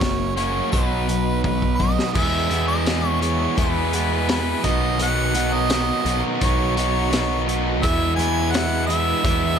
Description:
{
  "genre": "classic rock",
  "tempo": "85 BPM",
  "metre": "4/4",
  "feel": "straight",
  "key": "unclear",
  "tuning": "A4 = 438 Hz",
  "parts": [
    { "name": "clear harmonica", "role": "melody", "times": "0.0-9.6 s", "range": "B4 to G#5", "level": "-25 LUFS", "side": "right 1 dB", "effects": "tape echo" },
    { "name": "biting overdriven guitar", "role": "riff", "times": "0.0-9.6 s", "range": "E2 to G#4", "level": "-24 LUFS", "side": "right 13 dB", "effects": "none" },
    { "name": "distorted electric guitar", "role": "riff", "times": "0.0-9.6 s", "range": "B2 to E4", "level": "-26 LUFS", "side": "left 16 dB", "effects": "overdrive" },
    { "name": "growling picked electric bass", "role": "bass", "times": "0.0-9.6 s", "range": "F#1 to E2", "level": "-25 LUFS", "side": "equal", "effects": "overdrive" },
    { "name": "raw garage drum kit", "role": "drums", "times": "0.0-9.4 s", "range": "crash cymbal, hi-hat, kick drum, snare drum", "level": "-24 LUFS", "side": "left 1 dB", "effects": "none" },
    { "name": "picked plugged-in steel-string acoustic guitar", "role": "accompaniment", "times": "7.8-9.6 s", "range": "E3 to G#4", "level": "-31 LUFS", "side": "left 11 dB", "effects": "none" }
  ],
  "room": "light reverb",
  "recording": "none",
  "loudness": "-18 LUFS",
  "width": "side -7 dB against mid",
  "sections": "0.0-2.2 A section; 2.2-9.6 B section",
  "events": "drum fill 1.4-2.2",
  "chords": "0.0 F#; 0.7 B; 2.2 E; 4.6 Badd9; 7.8 E",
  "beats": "0.02 0.73 1.45 | 2.16 2.87 3.58 4.29 | 5.00 5.71 6.42 7.13 | 7.83 8.54 9.25"
}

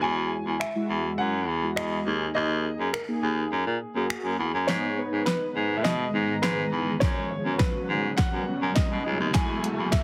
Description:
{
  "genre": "dance-pop",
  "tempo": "103 BPM",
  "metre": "4/4",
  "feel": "straight",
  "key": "G# minor",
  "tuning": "A4 = 440 Hz",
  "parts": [
    { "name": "warm baby grand piano", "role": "melody", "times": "0.0-10.0 s", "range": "G#4 to G#5", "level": "-35 LUFS", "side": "equal", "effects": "tape echo" },
    { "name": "mellow synth brass", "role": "accompaniment", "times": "0.0-10.0 s", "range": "G#3 to A#5", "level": "-34 LUFS", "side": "equal", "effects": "chorus, sidechain pumping" },
    { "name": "clear baritone saxophone", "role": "bass", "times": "0.0-9.9 s", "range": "C#2 to B2", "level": "-30 LUFS", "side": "equal", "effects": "sidechain pumping" },
    { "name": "pop drum kit", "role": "drums", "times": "0.6-10.0 s", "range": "finger snaps, hi-hat, kick drum, snare drum", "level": "-29 LUFS", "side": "equal", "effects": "none" },
    { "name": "granular cloud pad", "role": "sustained chords", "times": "5.5-10.0 s", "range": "C#3 to G#4", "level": "-37 LUFS", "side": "equal", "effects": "built-in reverb, sidechain pumping" },
    { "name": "riser", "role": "sound effects", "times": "6.0-10.0 s", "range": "none", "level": "-40 LUFS", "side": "equal", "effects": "none" }
  ],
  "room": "light reverb, digital ambience",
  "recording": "heavily compressed radio sound",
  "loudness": "-27 LUFS",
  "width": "mono",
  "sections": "0.0-4.7 A section; 4.7-10.0 B section",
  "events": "build-up 4.7-10.0; drum fill 4.7-10.0",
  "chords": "0.0 Eadd9; 2.1 D#sus4; 3.5 F#add9; 4.7 G#m; 7.0 F#sus4; 9.3 Eadd9",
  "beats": "| 0.03 0.61 1.19 1.77 | 2.36 2.94 3.52 4.10 | 4.69 5.27 5.85 6.43 | 7.02 7.60 8.18 8.76 | 9.35 9.93"
}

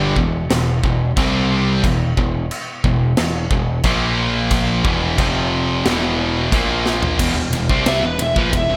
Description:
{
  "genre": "heavy metal",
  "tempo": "90 BPM",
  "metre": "4/4",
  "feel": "straight",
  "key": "E phrygian",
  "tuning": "A4 = 440 Hz",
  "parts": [
    { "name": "high-gain distorted guitar", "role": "riff", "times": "0.0-8.8 s", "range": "E2 to C4", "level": "-25 LUFS", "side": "equal", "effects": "distortion" },
    { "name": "high-gain distorted guitar", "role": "riff", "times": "0.0-8.8 s", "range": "E2 to C4", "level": "-28 LUFS", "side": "equal", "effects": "distortion" },
    { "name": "sludgy distorted guitar", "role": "riff", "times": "0.0-8.8 s", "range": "E2 to C4", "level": "-24 LUFS", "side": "equal", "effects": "overdrive" },
    { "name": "growling picked electric bass", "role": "bass", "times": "0.0-8.8 s", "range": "E1 to C2", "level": "-26 LUFS", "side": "equal", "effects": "overdrive" },
    { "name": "big rock drum kit", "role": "drums", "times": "0.2-8.7 s", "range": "china cymbal, crash cymbal, kick drum, ride cymbal, snare drum, toms", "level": "-24 LUFS", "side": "equal", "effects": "gated reverb" },
    { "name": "bluesy overdriven lead guitar", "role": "melody", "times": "7.9-8.8 s", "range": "B4 to E5", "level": "-22 LUFS", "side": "equal", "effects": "distortion" }
  ],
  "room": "light reverb, small room ambience",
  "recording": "bright 1980s-style digital production",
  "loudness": "-18 LUFS",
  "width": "mono",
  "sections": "0.0-7.2 A section; 7.2-8.8 B section",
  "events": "half time 0.0-7.2; drum fill 6.9-7.2; lead electric guitar solo 7.2-8.8",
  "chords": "0.0 Em; 1.2 C5; 1.8 E5; 3.8 A#5; 4.9 E5; 5.2 F5; 5.9 E5; 6.5 A#5; 7.2 Em",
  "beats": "0.50 1.17 | 1.84 2.51 3.18 3.85 | 4.52 5.19 5.86 6.53 | 7.20 7.87 8.54"
}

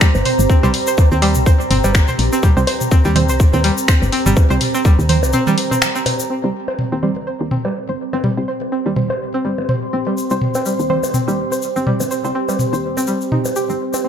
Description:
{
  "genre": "minimal techno",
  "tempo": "124 BPM",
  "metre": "4/4",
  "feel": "swing 57% on 16ths",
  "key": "C minor",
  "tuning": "A4 = 440 Hz",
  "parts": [
    { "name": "string-like resonator pluck", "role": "riff", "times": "0.0-14.1 s", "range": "G3 to C5", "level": "-21 LUFS", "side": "equal", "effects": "chorus, cassette tape, sidechain pumping, digital delay" },
    { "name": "electronic kick drum", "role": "drums", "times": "0.0-5.0 s", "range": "none", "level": "-12 LUFS", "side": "equal", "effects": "studio reverb" },
    { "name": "garage drum kit", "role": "drums", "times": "0.0-6.2 s", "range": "finger snaps, hi-hat", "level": "-20 LUFS", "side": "left 2 dB", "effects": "studio reverb" },
    { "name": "egg shaker", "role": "percussion", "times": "0.0-6.3, 10.2-14.0 s", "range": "none", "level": "-28 LUFS", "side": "left 6 dB", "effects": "none" },
    { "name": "deep dark ambient pad", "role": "texture", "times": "0.0-14.1 s", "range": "C4 to C6", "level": "-22 LUFS", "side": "right 1 dB", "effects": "chorus, built-in reverb, sidechain pumping" },
    { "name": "woody FM bass", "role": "bass", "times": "0.1-13.8 s", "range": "G1 to Eb2", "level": "-19 LUFS", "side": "equal", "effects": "sidechain pumping, high-pass filter" },
    { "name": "electronic bongos, toms and congas", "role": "percussion", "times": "0.1-14.0 s", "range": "none", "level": "-22 LUFS", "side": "right 1 dB", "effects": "studio reverb, digital delay" },
    { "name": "filtered dub chord stab", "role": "stabs", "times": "0.6-12.3 s", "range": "G3 to C5", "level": "-26 LUFS", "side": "right 2 dB", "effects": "none" }
  ],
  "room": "light reverb",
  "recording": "none",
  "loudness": "-14 LUFS",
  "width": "side -8 dB against mid",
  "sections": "0.0-6.3 A section; 6.3-14.0 B section",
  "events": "drop 0.0-6.3; break 5.3-6.3",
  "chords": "0.0 C5",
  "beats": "0.01 | 0.49 0.98 1.46 1.95 | 2.43 2.92 3.40 3.88 | 4.37 4.85 5.33 5.82 | 6.30 6.79 7.27 7.75 | 8.24 8.72 9.21 9.69 | 10.17 10.66 11.14 11.62 | 12.11 12.59 13.08 13.56 | 14.04"
}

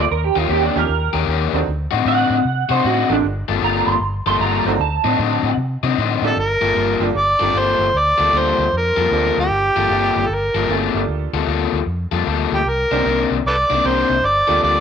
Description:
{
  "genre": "electric blues shuffle",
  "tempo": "153 BPM",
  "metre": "4/4",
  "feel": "swing 64% on 8ths",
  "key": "G minor",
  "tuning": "A4 = 440 Hz",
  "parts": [
    { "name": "electric guitar through a small old amp", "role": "second line", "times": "0.0-5.6 s", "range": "D4 to C6", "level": "-20 LUFS", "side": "right 10 dB", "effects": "analog chorus" },
    { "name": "vintage muted fingered electric bass", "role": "bass", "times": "0.0-14.8 s", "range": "G1 to C3", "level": "-23 LUFS", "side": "equal", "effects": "none" },
    { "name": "raw garage guitar", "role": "riff", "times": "0.4-14.8 s", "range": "C3 to A4", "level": "-20 LUFS", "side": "left 11 dB", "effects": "overdrive" },
    { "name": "bright upright piano", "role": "accompaniment", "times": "0.8-14.8 s", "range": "A3 to C5", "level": "-26 LUFS", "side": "right 13 dB", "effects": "none" },
    { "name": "overdriven harmonica", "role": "melody", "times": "6.3-14.8 s", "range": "G4 to D5", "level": "-16 LUFS", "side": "right 1 dB", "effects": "slapback echo" }
  ],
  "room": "moderate spring reverb, RT60 1.4 s, small room ambience",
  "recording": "1960s-style stereo with parts hard left and right",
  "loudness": "-15 LUFS",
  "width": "side -7 dB against mid",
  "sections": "0.0-6.4 A section; 6.4-14.8 B section",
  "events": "clean electric guitar solo 0.0-6.4",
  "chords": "0.1 Eb7; 1.7 D7b9; 3.2 Gm9; 4.8 D7b9; 6.4 Gm9; 12.7 Cm9; 14.2 Gm9",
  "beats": "| 0.11 0.50 0.89 1.29 | 1.68 2.07 2.46 2.85 | 3.24 3.63 4.02 4.41 | 4.80 5.20 5.59 5.98 | 6.37 6.76 7.16 7.55 | 7.94 8.34 8.73 9.12 | 9.51 9.91 10.30 10.69 | 11.09 11.48 11.87 12.27 | 12.66 13.05 13.45 13.84 | 14.23 14.62"
}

